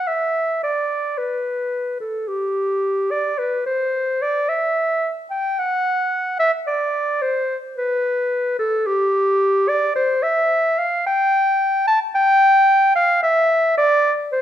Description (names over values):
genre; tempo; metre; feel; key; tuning
classical, baroque-style fantasia for unaccompanied clarinet; 55 BPM; 3/4; rubato; G major, C major from 10.0 s; A4 = 440 Hz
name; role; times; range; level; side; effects
mellow clarinet; solo; 0.0-14.4 s; G4 to A5; -17 LUFS; equal; none
room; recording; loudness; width
moderate recital hall reverb, RT60 1.4 s; minimal, uncompressed stereo recording; -17 LUFS; side -10 dB against mid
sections
0.0-14.4 A section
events
none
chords
none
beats
| 0.08 1.18 2.28 | 3.38 4.48 5.58 | 6.67 7.77 8.86 | 9.96 11.05 12.15 | 13.23 14.32